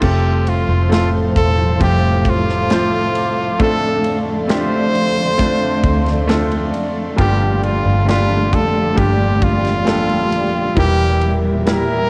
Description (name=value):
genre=pop ballad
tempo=67 BPM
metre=4/4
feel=straight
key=unclear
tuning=A4 = 440 Hz
part: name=bright trumpet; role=melody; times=0.0-12.1 s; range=F4 to C5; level=-22 LUFS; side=equal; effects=none
part: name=rich studio cello section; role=second line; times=0.0-12.1 s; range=C2 to A3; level=-24 LUFS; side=equal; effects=cassette tape
part: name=bright concert grand piano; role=accompaniment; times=0.0-12.1 s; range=G2 to C5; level=-23 LUFS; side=equal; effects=cassette tape
part: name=airy breathy pad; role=sustained chords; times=0.0-12.1 s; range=G4 to D6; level=-28 LUFS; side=equal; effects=chorus, cassette tape
part: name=vintage muted fingered electric bass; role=bass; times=0.0-12.1 s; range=E1 to D2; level=-21 LUFS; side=equal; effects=none
part: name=modern studio drum kit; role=drums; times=0.0-11.9 s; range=crash cymbal, kick drum, ride cymbal, snare drum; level=-24 LUFS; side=equal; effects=cassette tape
room=light reverb, studio reverb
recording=home recording on cassette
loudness=-16 LUFS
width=mono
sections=0.0-12.1 A section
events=none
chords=0.0 F; 3.6 Dm7; 7.2 Gm7; 10.8 Edim